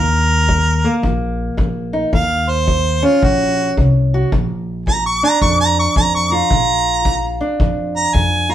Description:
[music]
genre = acoustic country blues, solo or duo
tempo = 110 BPM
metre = 4/4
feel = swing 64% on 8ths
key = Bb major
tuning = A4 = 442 Hz
[part]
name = bright harmonica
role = melody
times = 0.0-8.5 s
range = F4 to Db6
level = -16 LUFS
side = right 2 dB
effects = none
[part]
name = fingerpicked old ladder-braced acoustic guitar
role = accompaniment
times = 0.0-8.5 s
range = Bb2 to Gb4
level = -19 LUFS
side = equal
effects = none
[part]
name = upright bass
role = bass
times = 0.0-8.5 s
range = Bb1 to F2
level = -18 LUFS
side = left 1 dB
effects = none
[part]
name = kick drum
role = drums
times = 0.5-8.3 s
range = none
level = -19 LUFS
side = equal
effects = none
[sound]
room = moderate studio reverb, RT60 0.8 s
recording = band playing live in one room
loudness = -13 LUFS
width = side -11 dB against mid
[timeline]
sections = 0.0-8.5 A section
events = harmonica solo 0.0-8.5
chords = 0.0 Eb; 2.1 Ebm7; 4.3 Bb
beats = 0.48 1.03 1.58 | 2.12 2.67 3.22 3.76 | 4.31 4.86 5.40 5.95 | 6.50 7.04 7.59 8.13

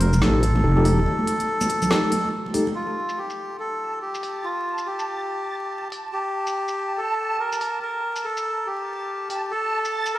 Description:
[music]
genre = deep dubstep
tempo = 142 BPM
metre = 4/4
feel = swing 60% on 16ths, half-time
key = unclear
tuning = A4 = 440 Hz
[part]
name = melodica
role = melody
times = 0.0-10.2 s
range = F4 to Bb4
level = -26 LUFS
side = equal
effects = dub echo
[part]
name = deep soft wobble bass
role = bass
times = 0.0-1.1 s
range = F1 to A1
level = -18 LUFS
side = equal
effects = chorus
[part]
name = deep house drum kit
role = drums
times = 0.0-10.1 s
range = hi-hat, shaker, snare drum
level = -30 LUFS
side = equal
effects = low-pass filter on hats, low-pass filter on perc, low-pass filter on snare
[part]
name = congas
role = percussion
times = 0.0-2.7 s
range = none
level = -26 LUFS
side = right 2 dB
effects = none
[part]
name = tine electric piano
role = stabs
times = 0.2-2.7 s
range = Eb4 to A4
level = -27 LUFS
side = left 2 dB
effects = medium tremolo, low-pass filter, dub echo
[part]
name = backwards swelling texture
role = texture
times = 3.8-10.2 s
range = A5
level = -32 LUFS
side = right 3 dB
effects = built-in reverb
[sound]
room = moderate huge ambient reverb, RT60 4.1 s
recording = played on a big sound system in a bare room, stone room reverb, vinyl crackle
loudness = -22 LUFS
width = side -15 dB against mid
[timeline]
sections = 0.0-2.8 A section; 2.8-10.2 B section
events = drop 0.0-2.8; break 1.1-2.8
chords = 0.0 F7; 2.8 N.C.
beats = 0.22 0.64 | 1.06 1.48 1.91 2.33 | 2.75 3.17 3.60 4.02 | 4.44 4.87 5.29 5.71 | 6.13 6.55 6.98 7.40 | 7.82 8.24 8.67 9.09 | 9.51 9.94

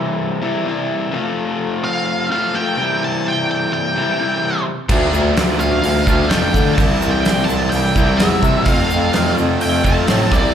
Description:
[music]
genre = classic rock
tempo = 127 BPM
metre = 4/4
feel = straight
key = F major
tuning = A4 = 440 Hz
[part]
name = overdriven electric guitar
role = riff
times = 0.0-10.5 s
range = C3 to F4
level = -20 LUFS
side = left 4 dB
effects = slapback echo
[part]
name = octave-fuzz lead guitar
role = melody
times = 1.8-10.5 s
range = D5 to A5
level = -21 LUFS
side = right 1 dB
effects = wah, distortion, plate reverb, tape echo
[part]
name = distorted electric guitar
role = riff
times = 4.9-10.5 s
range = C3 to F4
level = -23 LUFS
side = right 14 dB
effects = overdrive, slapback echo
[part]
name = fuzz guitar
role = riff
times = 4.9-10.5 s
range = F2 to D4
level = -24 LUFS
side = right 2 dB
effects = distortion, slapback echo
[part]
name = clear bass clarinet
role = bass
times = 4.9-10.5 s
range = C2 to D3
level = -19 LUFS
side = right 1 dB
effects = none
[part]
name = huge arena drum kit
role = drums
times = 4.9-10.4 s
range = crash cymbal, hi-hat, kick drum, snare drum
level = -19 LUFS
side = right 1 dB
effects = none
[part]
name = egg shaker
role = percussion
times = 4.9-10.4 s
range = none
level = -39 LUFS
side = right 7 dB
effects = none
[sound]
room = light reverb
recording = live gig heard through the venue's PA, club reverb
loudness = -14 LUFS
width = side -9 dB against mid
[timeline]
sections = 0.0-10.5 A section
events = none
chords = 0.0 C; 1.1 F; 2.8 C; 4.9 Dm; 6.8 C; 8.7 F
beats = 0.18 0.65 | 1.13 1.60 2.07 2.54 | 3.01 3.48 3.95 4.42 | 4.90 5.37 5.84 6.31 | 6.78 7.25 7.72 8.20 | 8.67 9.14 9.61 10.09

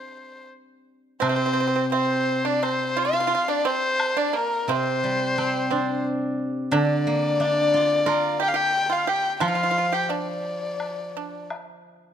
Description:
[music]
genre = chinese traditional, Chinese chamber ensemble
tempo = 88 BPM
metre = 4/4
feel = rubato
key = C shang mode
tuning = A4 = 440 Hz
[part]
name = dark erhu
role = melody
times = 0.0-11.5 s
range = Bb4 to G5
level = -24 LUFS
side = left 3 dB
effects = none
[part]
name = pipa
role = second line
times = 1.2-11.5 s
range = Bb3 to G4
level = -27 LUFS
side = right 8 dB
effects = none
[part]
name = steel-string zither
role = accompaniment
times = 1.2-11.5 s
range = C3 to Bb4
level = -26 LUFS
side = equal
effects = none
[part]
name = woodblock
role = percussion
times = 1.2-11.7 s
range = none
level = -34 LUFS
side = left 2 dB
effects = none
[sound]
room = light reverb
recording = close, detailed microphones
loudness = -21 LUFS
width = side -9 dB against mid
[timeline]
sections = 0.0-1.2 A section; 1.2-12.1 B section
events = none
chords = none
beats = 0.50 | 1.23 1.94 2.64 3.33 | 4.01 4.70 5.38 6.05 | 6.72 7.39 8.06 8.73 | 9.41 10.10 10.80 11.50

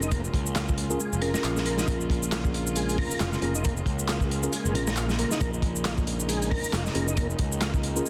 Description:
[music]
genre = breakbeat, breaks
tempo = 136 BPM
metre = 4/4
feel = swing 58% on 16ths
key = Bb minor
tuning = A4 = 440 Hz
[part]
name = dark chamber string section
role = sustained chords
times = 0.0-8.1 s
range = Db3 to F4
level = -37 LUFS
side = equal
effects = sidechain pumping
[part]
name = tonewheel organ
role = riff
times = 0.0-8.1 s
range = Ab3 to Bb4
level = -36 LUFS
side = equal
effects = chorus vibrato, fast rotary speaker, tube saturation, vintage 12-bit sampler grit, dub echo
[part]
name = fuzz picked electric bass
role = bass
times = 0.0-8.0 s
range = F1 to Db2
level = -32 LUFS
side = equal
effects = overdrive, tube saturation
[part]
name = electronic shaker and handclaps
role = drums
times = 0.0-8.1 s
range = none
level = -36 LUFS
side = equal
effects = none
[part]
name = crunchy breakbeat drum kit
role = drums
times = 0.1-8.0 s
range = hi-hat, kick drum, snare drum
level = -32 LUFS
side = equal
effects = none
[part]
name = mellow tine electric piano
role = stabs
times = 0.9-8.0 s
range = Db4 to Bb4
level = -35 LUFS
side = equal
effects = dub echo
[sound]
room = light reverb, small room ambience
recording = dense, heavily limited modern master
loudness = -27 LUFS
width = mono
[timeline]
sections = 0.0-8.1 A section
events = none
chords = 0.0 Bbm7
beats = | 0.12 0.56 1.00 1.44 | 1.88 2.32 2.76 3.20 | 3.65 4.09 4.53 4.97 | 5.41 5.85 6.29 6.73 | 7.17 7.62 8.06

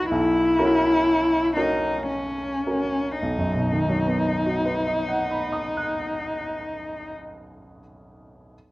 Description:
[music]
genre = classical, romantic duo for cello and grand piano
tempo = 49-66 BPM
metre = 3/4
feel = rubato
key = B major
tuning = A4 = 441 Hz
[part]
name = warm cello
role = melody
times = 0.0-7.1 s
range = C#4 to F#4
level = -23 LUFS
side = left 1 dB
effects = none
[part]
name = clear grand piano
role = accompaniment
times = 0.0-8.6 s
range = B1 to F#6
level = -26 LUFS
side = right 1 dB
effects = none
[sound]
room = moderate recital hall reverb, RT60 1.5 s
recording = worn, warbling old tape, cassette tape, warbly pitch drift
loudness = -21 LUFS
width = side -20 dB against mid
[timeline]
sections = 0.0-3.2 A section; 3.2-6.3 B section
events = slowing down 0.0-3.2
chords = 0.1 F#7/B; 3.2 B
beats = | 0.10 1.04 2.07 | 3.22 4.25 5.28

